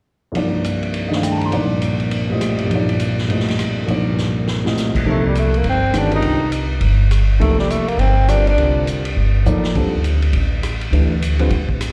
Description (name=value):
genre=modal jazz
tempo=204 BPM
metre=4/4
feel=swing 61% on 8ths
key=C dorian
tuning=A4 = 442 Hz
part: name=warm baby grand piano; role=accompaniment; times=0.3-11.5 s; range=C2 to C6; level=-22 LUFS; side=equal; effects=slapback echo
part: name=vintage drum kit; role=drums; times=0.3-11.9 s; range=crash cymbal, hi-hat, kick drum, ride cymbal, rim click, snare drum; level=-29 LUFS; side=equal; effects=none
part: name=upright bass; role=bass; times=5.0-11.9 s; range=G1 to A2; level=-19 LUFS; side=equal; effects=none
part: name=breathy tenor saxophone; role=melody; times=5.1-8.9 s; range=G3 to Eb4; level=-22 LUFS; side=equal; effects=slapback echo
room=studio ambience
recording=live gig heard through the venue's PA, recital hall reverb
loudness=-18 LUFS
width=mono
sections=0.4-5.1 A section; 5.1-11.9 B section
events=drum fill 4.2-4.8, 9.5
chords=0.4 Cm11; 9.8 Dsus4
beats=| 0.36 0.65 0.94 1.24 | 1.53 1.83 2.12 2.41 | 2.71 3.00 3.29 3.59 | 3.88 4.18 4.47 4.76 | 5.06 5.35 5.64 5.94 | 6.23 6.53 6.82 7.11 | 7.41 7.70 7.99 8.29 | 8.58 8.87 9.17 9.46 | 9.75 10.05 10.34 10.63 | 10.93 11.22 11.51 11.80